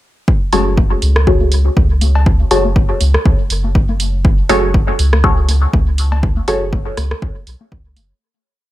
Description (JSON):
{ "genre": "dub techno", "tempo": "121 BPM", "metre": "4/4", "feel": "swing 56% on 16ths", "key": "F# minor", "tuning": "A4 = 438 Hz", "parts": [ { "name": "electronic kick drum", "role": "drums", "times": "0.3-7.8 s", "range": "none", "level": "-14 LUFS", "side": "equal", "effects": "none" }, { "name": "filtered dub chord stab", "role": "stabs", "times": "0.5-6.6 s", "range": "F#4 to C#5", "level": "-18 LUFS", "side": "left 1 dB", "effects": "phaser, sidechain pumping, dub echo" }, { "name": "soft dub sub bass", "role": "bass", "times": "0.5-8.1 s", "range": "F#1 to C#2", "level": "-15 LUFS", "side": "equal", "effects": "sidechain pumping" }, { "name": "punchy analog drum machine", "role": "drums", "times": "0.5-8.1 s", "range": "hi-hat, rim click", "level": "-21 LUFS", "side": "right 2 dB", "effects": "dub echo" }, { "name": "cowbell and congas", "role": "percussion", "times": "0.5-8.1 s", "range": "none", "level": "-26 LUFS", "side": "left 4 dB", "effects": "sidechain pumping on perc, dub echo" } ], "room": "light reverb, digital ambience", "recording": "none", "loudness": "-11 LUFS", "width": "side -15 dB against mid", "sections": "0.3-8.2 groove", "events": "fade-out 5.6-8.2", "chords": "0.3 F#madd9", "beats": "| 0.28 0.78 1.27 1.77 | 2.26 2.76 3.26 3.75 | 4.25 4.74 5.24 5.74 | 6.23 6.73 7.22 7.72" }